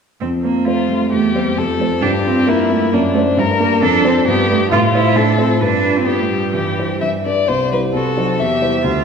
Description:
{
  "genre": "quick classical-period movement for piano trio",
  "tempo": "132 BPM",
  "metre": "2/4",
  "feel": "straight",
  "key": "F major, C major from 3.8 s",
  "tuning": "A4 = 437 Hz",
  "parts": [
    { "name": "rich cello", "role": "second line", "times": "0.2-9.0 s", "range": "E3 to G4", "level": "-18 LUFS", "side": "right 4 dB", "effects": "none" },
    { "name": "dark baby grand piano", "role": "accompaniment", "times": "0.2-9.0 s", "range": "C2 to C5", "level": "-17 LUFS", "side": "equal", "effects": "none" },
    { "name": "warm violin", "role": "melody", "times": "0.7-8.8 s", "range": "D4 to E5", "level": "-18 LUFS", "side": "left 4 dB", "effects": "none" }
  ],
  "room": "wet scoring stage reverb, RT60 2.2 s",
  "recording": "recorded in a church or concert hall",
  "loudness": "-13 LUFS",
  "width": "side -6 dB against mid",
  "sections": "0.2-7.5 A section; 7.5-9.0 B section",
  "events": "none",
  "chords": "0.2 F; 1.1 C/E; 1.6 F; 2.0 Gm7; 2.9 D7/F#; 3.4 Gm; 3.8 Dm7/F; 4.3 G; 4.7 F/A; 5.6 G7; 6.5 C/G; 7.0 G; 7.5 C; 7.9 Cdim7; 8.4 C/E",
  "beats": "| 0.21 0.67 | 1.12 1.58 | 2.03 2.48 | 2.93 3.38 | 3.82 4.27 | 4.72 5.16 | 5.61 6.07 | 6.54 7.01 | 7.49 7.94 | 8.40 8.84"
}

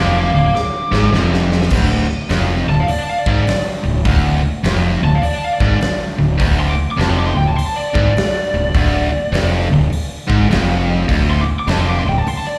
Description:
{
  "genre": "blues rock power trio and southern rock",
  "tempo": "102 BPM",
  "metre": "4/4",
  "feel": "swing 65% on 8ths",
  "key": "D minor",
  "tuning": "A4 = 440 Hz",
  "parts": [
    { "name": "lead guitar through a small cranked amp", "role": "melody", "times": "0.0-12.6 s", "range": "D5 to D6", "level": "-24 LUFS", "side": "equal", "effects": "overdrive, slapback echo, analog delay" },
    { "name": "distorted electric guitar", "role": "riff", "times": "0.0-12.3 s", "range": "D2 to G#2", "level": "-20 LUFS", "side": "equal", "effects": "overdrive, slapback echo" },
    { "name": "fuzz fingered electric bass", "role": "bass", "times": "0.0-12.3 s", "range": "D1 to G#1", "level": "-20 LUFS", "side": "equal", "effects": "overdrive" },
    { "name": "big rock drum kit", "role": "drums", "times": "0.6-12.4 s", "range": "crash cymbal, hi-hat, kick drum, snare drum", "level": "-24 LUFS", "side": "equal", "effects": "none" }
  ],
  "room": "light reverb, small room ambience",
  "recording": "live gig heard through the venue's PA, club reverb",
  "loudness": "-16 LUFS",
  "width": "mono",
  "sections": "0.0-1.7 A section; 1.7-12.6 A section",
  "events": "lead electric guitar solo 0.0-12.6; drum fill 0.5-1.7",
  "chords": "0.0 Dm",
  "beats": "0.54 1.13 | 1.72 2.30 2.89 3.47 | 4.06 4.65 5.23 5.82 | 6.41 6.99 7.58 8.17 | 8.75 9.34 9.93 10.51 | 11.10 11.69 12.27"
}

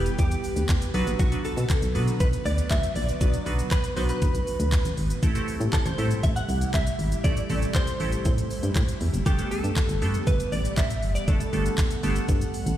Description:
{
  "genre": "dance-pop",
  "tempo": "119 BPM",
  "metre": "4/4",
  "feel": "straight",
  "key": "A dorian",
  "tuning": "A4 = 440 Hz",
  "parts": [
    { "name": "direct-recorded clean electric guitar", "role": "melody", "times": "0.0-12.8 s", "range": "F#4 to F#5", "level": "-32 LUFS", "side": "equal", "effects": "ensemble chorus, ping-pong delay" },
    { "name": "glassy wavetable pluck", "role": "accompaniment", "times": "0.0-12.7 s", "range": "F#3 to B4", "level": "-32 LUFS", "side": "right 2 dB", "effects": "chorus, sidechain pumping" },
    { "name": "airy breathy pad", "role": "sustained chords", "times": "0.0-12.8 s", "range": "C3 to F#5", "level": "-34 LUFS", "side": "right 2 dB", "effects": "chorus, sidechain pumping" },
    { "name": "solid FM bass", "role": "bass", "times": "0.0-12.7 s", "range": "F#1 to B2", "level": "-26 LUFS", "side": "equal", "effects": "sidechain pumping" },
    { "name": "pop drum kit", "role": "drums", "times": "0.1-12.8 s", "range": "handclaps, hi-hat, kick drum, shaker", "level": "-26 LUFS", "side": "equal", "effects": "none" },
    { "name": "tube shaker", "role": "percussion", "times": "0.1-12.8 s", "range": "none", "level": "-47 LUFS", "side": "right 8 dB", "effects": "none" }
  ],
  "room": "digital ambience",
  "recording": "played on a big sound system in a bare room, stone room reverb",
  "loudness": "-22 LUFS",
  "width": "side -12 dB against mid",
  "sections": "0.0-12.8 A section",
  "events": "none",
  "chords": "0.0 Em; 0.9 Bm; 5.2 Am7; 9.3 Gadd9",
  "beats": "0.19 0.69 | 1.19 1.70 2.20 2.71 | 3.21 3.71 4.22 4.72 | 5.23 5.73 6.24 6.74 | 7.24 7.75 8.25 8.76 | 9.26 9.77 10.27 10.77 | 11.28 11.78 12.29"
}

